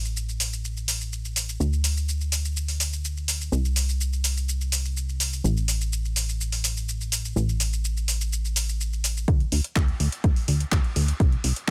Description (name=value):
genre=progressive house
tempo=125 BPM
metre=4/4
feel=straight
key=A minor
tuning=A4 = 441 Hz
part: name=plucky analog bass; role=bass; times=0.0-11.7 s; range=A1 to D2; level=-28 LUFS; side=equal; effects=sidechain pumping
part: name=deep house drum kit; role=drums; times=0.1-11.7 s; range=handclaps, hi-hat, shaker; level=-30 LUFS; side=equal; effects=small room ambience
part: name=electronic kick drum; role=drums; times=9.3-11.7 s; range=none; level=-24 LUFS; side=equal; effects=small room ambience
room=little or no reverb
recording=none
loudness=-26 LUFS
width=mono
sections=0.0-9.3 A section; 9.3-11.7 B section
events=build-up 9.3-11.7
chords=none